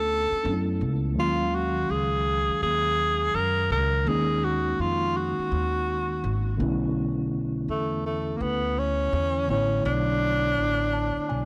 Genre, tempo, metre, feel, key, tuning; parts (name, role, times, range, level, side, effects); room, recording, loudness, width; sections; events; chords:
hip hop, jazz-hop; 83 BPM; 4/4; swing 64% on 16ths; A4 = 440 Hz
mellow tenor saxophone; melody; 0.0-11.5 s; A3 to Bb4; -28 LUFS; equal; analog delay
mellow tine electric piano; accompaniment; 0.0-11.5 s; D3 to A5; -32 LUFS; equal
upright bass; bass; 0.0-11.5 s; Ab1 to F#2; -31 LUFS; equal
light reverb; dry, gritty hardware recording, transformer saturation; -26 LUFS; mono
0.0-11.5 A section
tine electric piano fill 10.6-11.5
0.0 Bm11; 1.2 Ebm11; 6.6 Bm11